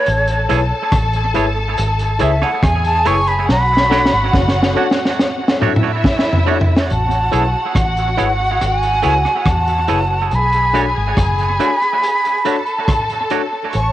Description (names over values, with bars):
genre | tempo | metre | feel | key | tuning
lovers rock reggae | 70 BPM | 4/4 | straight | A major | A4 = 440 Hz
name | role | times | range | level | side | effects
breathy concert flute | melody | 0.0-13.9 s | C#5 to C#6 | -17 LUFS | right 1 dB | cassette tape, analog delay
warm studio string section | second line | 0.0-13.9 s | E4 to C#6 | -21 LUFS | equal | cassette tape
vintage muted fingered electric bass | bass | 0.1-13.9 s | F#1 to E2 | -18 LUFS | equal | none
crunchy breakbeat drum kit | drums | 0.1-13.9 s | hi-hat, kick drum, rim click, snare drum, toms | -17 LUFS | equal | cassette tape, analog delay
tine electric piano | accompaniment | 0.5-13.6 s | D4 to C#5 | -23 LUFS | left 8 dB | overdrive, fast stereo tremolo, cassette tape
twangy electric guitar | stabs | 0.5-13.4 s | A3 to C#5 | -24 LUFS | right 8 dB | cassette tape, analog delay
room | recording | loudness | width
light reverb, small room ambience | home recording on cassette | -13 LUFS | side -13 dB against mid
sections
0.0-6.9 A section; 6.9-13.9 B section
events
flute solo 0.0-6.9; drum fill 3.5-6.9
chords
0.1 Amaj7; 3.5 Bm9; 6.9 Amaj7; 10.3 Bm9